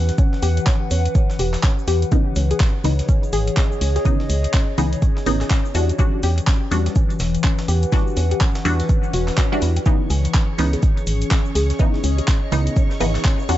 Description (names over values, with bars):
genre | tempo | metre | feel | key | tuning
deep house | 124 BPM | 4/4 | swing 60% on 16ths | C# minor | A4 = 439 Hz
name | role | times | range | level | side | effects
organ-like FM bass | bass | 0.0-13.6 s | E1 to E2 | -19 LUFS | equal | sidechain pumping
warbly tape-like pad | texture | 0.0-13.6 s | E3 to F#5 | -28 LUFS | left 2 dB | chorus, built-in reverb, phaser, sidechain pumping
breakbeat sampler-style drum kit | drums | 0.1-13.6 s | hi-hat, shaker, snare drum | -37 LUFS | equal | none
deep house drum kit | drums | 0.1-13.6 s | handclaps, hi-hat | -28 LUFS | equal | none
egg shaker | percussion | 0.1-13.6 s | none | -40 LUFS | right 1 dB | none
warbly dusty pluck | arpeggios | 0.2-13.5 s | C#4 to G#4 | -28 LUFS | left 3 dB | analog chorus, sidechain pumping, dub echo
electronic kick drum | drums | 0.2-13.4 s | none | -18 LUFS | equal | none
filtered dub chord stab | stabs | 2.1-13.6 s | C#3 to F#4 | -24 LUFS | equal | phaser, sidechain pumping, dub echo
swell | sound effects | 9.0-9.9 s | none | -33 LUFS | left 2 dB | none
string machine, violins | texture | 9.9-13.6 s | C#5 to C#6 | -35 LUFS | right 1 dB | ensemble chorus, sidechain pumping
room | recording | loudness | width
little or no reverb | nothing above 7.9 kHz | -16 LUFS | side -14 dB against mid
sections
0.0-13.6 A section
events
swell 9.0-9.9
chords
0.0 Esus2; 2.1 C#m9; 5.7 Em9; 9.9 C#m9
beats
| 0.18 0.67 1.15 1.64 | 2.12 2.60 3.09 3.57 | 4.05 4.54 5.02 5.51 | 5.99 6.47 6.96 7.44 | 7.92 8.41 8.89 9.38 | 9.86 10.35 10.83 11.31 | 11.80 12.28 12.76 13.25